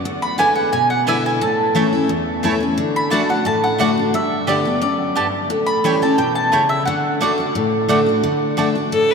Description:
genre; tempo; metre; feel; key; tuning
bluegrass; 176 BPM; 4/4; straight; D major; A4 = 441 Hz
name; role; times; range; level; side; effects
picked steel-string acoustic guitar; accompaniment; 0.0-9.1 s; E2 to G4; -18 LUFS; left 1 dB; none
mandolin; melody; 0.2-7.8 s; D5 to B5; -20 LUFS; equal; none
mandolin; stabs; 0.4-8.7 s; A3 to A5; -23 LUFS; right 3 dB; none
clear fiddle; second line; 8.9-9.1 s; A4 to B4; -21 LUFS; left 1 dB; none
room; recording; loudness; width
wet cathedral reverb, RT60 6.4 s; in a vast, echoing space; -15 LUFS; side -5 dB against mid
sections
0.0-8.2 A section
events
none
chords
0.1 E7; 1.4 A; 2.8 D; 4.1 Gadd9; 5.5 A7; 6.9 D

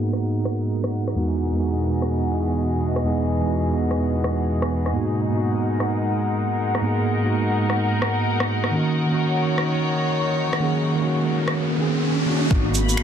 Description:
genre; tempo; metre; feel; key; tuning
future garage; 127 BPM; 4/4; swing 62% on 16ths; G# minor; A4 = 440 Hz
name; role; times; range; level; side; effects
mellow tine electric piano; accompaniment; 0.0-13.0 s; E2 to G#4; -22 LUFS; right 2 dB; medium stereo tremolo, sidechain pumping, dub echo
warm studio string section; sustained chords; 0.0-13.0 s; B2 to B5; -25 LUFS; left 2 dB; sidechain pumping, low-pass filter
electronic rim click, shaker and finger snaps; drums; 0.1-13.0 s; none; -26 LUFS; left 1 dB; soft clipping on snare
riser; sound effects; 10.1-12.5 s; none; -28 LUFS; left 1 dB; none
dark detuned saw bass; bass; 12.5-13.0 s; G#1; -22 LUFS; equal; sidechain pumping
electronic kick drum; drums; 12.5-12.6 s; none; -20 LUFS; equal; none
room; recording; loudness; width
moderate lush hall reverb, RT60 1.5 s; dense, heavily limited modern master, low-pass filter; -20 LUFS; side -8 dB against mid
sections
0.0-12.5 A section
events
filter sweep on string section 0.0-12.5; filter sweep 0.0-12.5; riser 10.1-12.5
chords
0.0 G#m9; 1.2 Emaj9; 4.9 G#m9; 8.7 D#m7; 12.5 G#m9

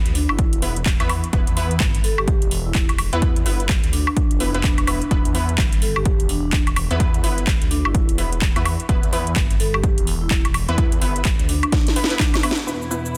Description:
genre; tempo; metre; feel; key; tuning
bass house; 127 BPM; 4/4; swing 60% on 16ths; E minor; A4 = 440 Hz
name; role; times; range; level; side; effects
phased detuned saw bass; bass; 0.0-11.6 s; E1 to E2; -26 LUFS; equal; phaser, tube saturation, sidechain pumping
house drum kit; drums; 0.1-13.2 s; cabasa, handclaps, hi-hat, snare drum, woodblock; -27 LUFS; equal; overdrive
vibraphone with medium hard mallets; melody; 0.2-12.7 s; D4 to A4; -31 LUFS; equal; delay
electronic kick drum; drums; 0.4-12.3 s; none; -22 LUFS; equal; overdrive
orchestra-hit-like synth stab; stabs; 0.6-13.2 s; B3 to B4; -30 LUFS; equal; built-in reverb, sidechain pumping, delay
muted studio string section; sustained chords; 12.7-13.2 s; E2 to E4; -30 LUFS; equal; sidechain pumping
granular cloud pad; texture; 12.7-13.2 s; none; barely audible; none; none
room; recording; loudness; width
little or no reverb; dense, heavily limited modern master; -19 LUFS; mono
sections
0.0-12.7 A section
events
drum fill 11.7-12.7; band accent 12.5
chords
0.0 E5

